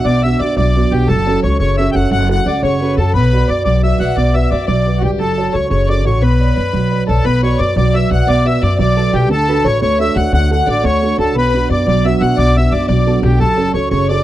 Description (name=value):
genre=celtic folk, Celtic jig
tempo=117 BPM (dotted quarters)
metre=6/8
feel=straight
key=B minor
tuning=A4 = 440 Hz
part: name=accordion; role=melody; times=0.0-14.2 s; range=F#4 to G5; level=-18 LUFS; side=equal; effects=none
part: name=concert harp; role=second line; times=0.0-14.2 s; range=G4 to F#5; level=-24 LUFS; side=equal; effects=none
part: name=warm fiddle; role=second line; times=0.0-14.2 s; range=G4 to F#5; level=-24 LUFS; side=left 11 dB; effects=none
part: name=dark baby grand piano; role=accompaniment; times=0.0-14.2 s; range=B2 to D5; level=-17 LUFS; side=right 4 dB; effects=none
part: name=upright bass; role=bass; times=0.1-14.2 s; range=F#1 to F#2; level=-15 LUFS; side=left 1 dB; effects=none
room=little or no reverb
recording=dry, close 1970s-style studio recording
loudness=-12 LUFS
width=side -14 dB against mid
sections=0.0-7.2 A section; 7.2-14.2 A section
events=none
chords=0.0 Bm; 1.1 F#m; 3.1 Bm; 5.2 F#m; 6.2 Bmadd9; 7.2 Bm; 9.3 D; 11.3 Bm; 13.4 F#m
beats=| 0.05 0.57 | 1.08 1.59 | 2.11 2.62 | 3.13 3.65 | 4.16 4.68 | 5.19 5.70 | 6.22 6.73 | 7.24 7.76 | 8.27 8.78 | 9.30 9.81 | 10.32 10.84 | 11.35 11.86 | 12.37 12.89 | 13.40 13.91